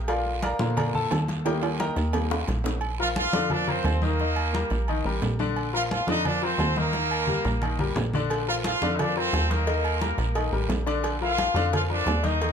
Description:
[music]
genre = latin, salsa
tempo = 175 BPM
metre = 4/4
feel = straight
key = Bb major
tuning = A4 = 442 Hz
[part]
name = bright grand piano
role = accompaniment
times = 0.0-12.5 s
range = D3 to Bb5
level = -29 LUFS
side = left 4 dB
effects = none
[part]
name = plucky analog bass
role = bass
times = 0.0-12.5 s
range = A1 to Bb2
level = -28 LUFS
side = right 1 dB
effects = none
[part]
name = agogo bells and timbales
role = percussion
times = 0.1-12.5 s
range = none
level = -34 LUFS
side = right 7 dB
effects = none
[part]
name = congas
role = percussion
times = 0.1-12.5 s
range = none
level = -33 LUFS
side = left 2 dB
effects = none
[part]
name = cowbell and bongos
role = percussion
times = 0.1-2.8, 8.3-12.5 s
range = none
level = -34 LUFS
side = left 1 dB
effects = none
[part]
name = guiro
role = percussion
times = 0.1-12.5 s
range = none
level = -40 LUFS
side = right 7 dB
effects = none
[part]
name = bright trumpet section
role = melody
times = 3.0-12.5 s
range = Bb3 to F5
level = -27 LUFS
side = equal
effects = slapback echo
[sound]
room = moderate studio reverb, RT60 0.6 s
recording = dark, warm production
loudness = -23 LUFS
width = side -7 dB against mid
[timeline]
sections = 0.0-2.8 A section; 2.8-12.5 B section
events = grand piano solo 0.0-2.8; drum fill 1.5-2.8, 6.9-8.3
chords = 0.1 Bb; 1.5 Eb; 2.8 Bb; 4.2 Eb; 5.6 Bb; 6.9 Eb; 8.3 Bb; 9.7 Eb; 11.0 Bb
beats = | 0.08 0.42 0.77 1.11 | 1.45 1.79 2.14 2.48 | 2.82 3.16 3.51 3.85 | 4.19 4.54 4.88 5.22 | 5.56 5.91 6.25 6.59 | 6.93 7.28 7.62 7.96 | 8.30 8.65 8.99 9.33 | 9.67 10.02 10.36 10.70 | 11.04 11.38 11.73 12.07 | 12.41

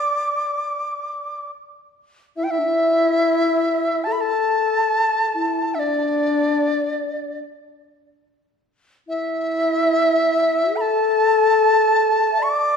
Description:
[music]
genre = chinese traditional, Chinese chamber ensemble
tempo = free time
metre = none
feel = none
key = unclear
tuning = A4 = 440 Hz
[part]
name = reedy large dizi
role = melody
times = 0.0-12.8 s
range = D5 to D6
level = -19 LUFS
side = equal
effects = none
[part]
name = xiao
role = second line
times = 0.0-12.8 s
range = D4 to E5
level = -22 LUFS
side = left 3 dB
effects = none
[sound]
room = wet recital hall reverb, RT60 1.6 s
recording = minimal, uncompressed stereo recording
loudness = -17 LUFS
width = side -6 dB against mid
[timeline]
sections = 0.0-2.4 A section; 2.4-12.8 B section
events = none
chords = none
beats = free time

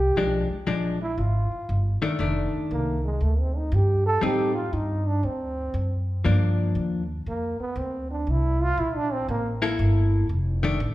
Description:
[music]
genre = jazz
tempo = 119 BPM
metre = 4/4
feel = swing 66% on 8ths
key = F mixolydian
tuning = A4 = 440 Hz
[part]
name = breathy trombone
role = second line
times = 0.0-9.5 s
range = Ab3 to A4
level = -27 LUFS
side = right 2 dB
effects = none
[part]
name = upright bass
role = bass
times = 0.0-10.9 s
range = F1 to G2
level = -25 LUFS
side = equal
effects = none
[part]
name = vintage hollow-body jazz guitar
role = accompaniment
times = 0.2-10.8 s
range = Eb3 to A4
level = -26 LUFS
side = left 3 dB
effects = none
[sound]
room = moderate recital hall reverb, RT60 1.7 s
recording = recorded in a church or concert hall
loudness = -22 LUFS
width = side -16 dB against mid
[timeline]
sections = 0.0-10.9 A section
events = trombone solo 0.0-10.9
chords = 0.2 Bdim7; 2.2 F13; 4.2 Am7b5; 5.2 D7; 6.2 Gm7; 8.3 C6; 10.3 F6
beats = | 0.17 0.68 1.19 1.69 | 2.20 2.71 3.21 3.72 | 4.23 4.73 5.24 5.74 | 6.25 6.75 7.26 7.76 | 8.27 8.78 9.28 9.79 | 10.29 10.80

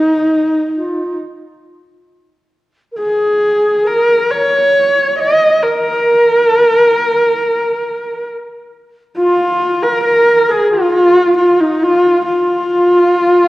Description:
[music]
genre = mongolian traditional, Mongolian folk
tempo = 68 BPM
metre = 4/4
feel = straight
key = Bb yu mode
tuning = A4 = 445 Hz
[part]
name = rich horsehead fiddle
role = melody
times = 0.0-13.5 s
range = Eb4 to Eb5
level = -11 LUFS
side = equal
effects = none
[part]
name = xiao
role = second line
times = 0.0-13.5 s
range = Eb4 to Eb5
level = -17 LUFS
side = equal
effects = none
[sound]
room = wet concert hall reverb, RT60 1.9 s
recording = worn, warbling old tape, cassette tape, warbly pitch drift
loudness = -10 LUFS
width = side -18 dB against mid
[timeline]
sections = 0.0-9.2 A section; 9.2-13.5 B section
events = none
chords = none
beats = 0.32 1.20 | 2.09 2.97 3.85 4.74 | 5.62 6.51 7.39 8.28 | 9.17 10.05 10.94 11.82 | 12.70

